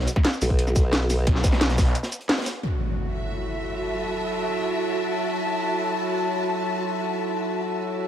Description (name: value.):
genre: dark technical drum and bass.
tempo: 176 BPM.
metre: 4/4.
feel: straight.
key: F# minor.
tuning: A4 = 440 Hz.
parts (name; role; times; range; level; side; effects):
snarling distorted saw bass; bass; 0.0-1.9 s; B1; -23 LUFS; equal; distortion, overdrive, sidechain pumping.
crunchy breakbeat drum kit; drums; 0.0-2.5 s; hi-hat, snare drum; -32 LUFS; equal; high-pass filter on hats, high-pass filter on snare, high-pass filter on room.
drum and bass drum kit; drums; 0.1-2.5 s; hi-hat, shaker, snare drum; -25 LUFS; equal; none.
electronic kick drum; drums; 0.2-1.8 s; none; -21 LUFS; equal; none.
formant-sweep wobble bass; bass; 0.4-1.3 s; B1; -22 LUFS; equal; chorus.
metallic inharmonic drone; sustained chords; 3.1-8.0 s; F#3 to A4; -27 LUFS; right 1 dB; chorus, built-in reverb, phaser, sidechain pumping.
impact; sound effects; 2.6-4.0 s; none; -30 LUFS; equal; none.
bright studio string section; texture; 2.6-8.1 s; F#4 to A5; -27 LUFS; left 1 dB; sidechain pumping.
room: moderate digital room reverb, RT60 1.2 s.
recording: none.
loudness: -22 LUFS.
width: side -10 dB against mid.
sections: 0.0-2.6 A section; 2.6-8.1 B section.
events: drop 0.0-2.6; break 2.0-2.6; band accent 2.3; impact 2.6-4.0.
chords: 0.0 N.C.; 2.6 F#m7.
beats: 0.25 0.59 0.93 | 1.27 1.61 1.95 2.29 | 2.63 2.97 3.31 3.66 | 4.00 4.34 4.68 5.02 | 5.36 5.70 6.04 6.38 | 6.72 7.07 7.41 7.75.